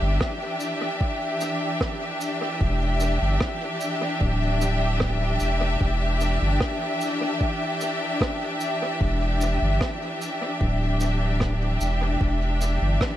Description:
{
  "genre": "ambient dub",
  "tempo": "75 BPM",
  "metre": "4/4",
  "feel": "straight",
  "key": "E minor",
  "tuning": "A4 = 441 Hz",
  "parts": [
    { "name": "clear symphonic string section", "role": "sustained chords", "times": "0.0-13.2 s", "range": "E3 to E5", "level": "-25 LUFS", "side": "left 1 dB", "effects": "none" },
    { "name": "warm sub bass", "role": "bass", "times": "0.0-13.0 s", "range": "D1 to G1", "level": "-23 LUFS", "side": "equal", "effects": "none" },
    { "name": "electronic kick drum", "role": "drums", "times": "0.2-13.2 s", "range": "none", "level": "-26 LUFS", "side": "equal", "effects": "overdrive" },
    { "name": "rim click and cabasa", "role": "drums", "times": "0.2-13.2 s", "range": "none", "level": "-33 LUFS", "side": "right 1 dB", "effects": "dub echo" }
  ],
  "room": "small room ambience",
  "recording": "echo-heavy mix",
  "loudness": "-22 LUFS",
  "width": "side -13 dB against mid",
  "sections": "0.0-13.2 A section",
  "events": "none",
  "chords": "0.0 Em7",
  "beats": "0.21 1.01 1.81 | 2.61 3.41 4.21 5.01 | 5.81 6.61 7.41 8.21 | 9.01 9.81 10.61 11.41 | 12.21 13.01"
}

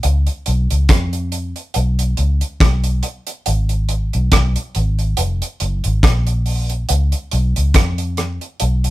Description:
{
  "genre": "lovers rock reggae",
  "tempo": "70 BPM",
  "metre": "4/4",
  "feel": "swing 57% on 16ths",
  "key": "unclear",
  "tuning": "A4 = 445 Hz",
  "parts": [
    { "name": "vintage muted fingered electric bass", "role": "bass", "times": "0.0-8.9 s", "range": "E#1 to E#2", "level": "-16 LUFS", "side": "equal", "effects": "none" },
    { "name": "damped 70s drum kit", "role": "drums", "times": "0.0-8.9 s", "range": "hi-hat, kick drum, rim click", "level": "-17 LUFS", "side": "equal", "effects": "none" }
  ],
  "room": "light reverb",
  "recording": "band playing live in one room",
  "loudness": "-15 LUFS",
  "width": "side -16 dB against mid",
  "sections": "0.0-8.9 A section",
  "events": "none",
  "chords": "none",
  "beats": "| 0.03 0.89 1.75 2.60 | 3.46 4.32 5.17 6.03 | 6.89 7.74 8.60"
}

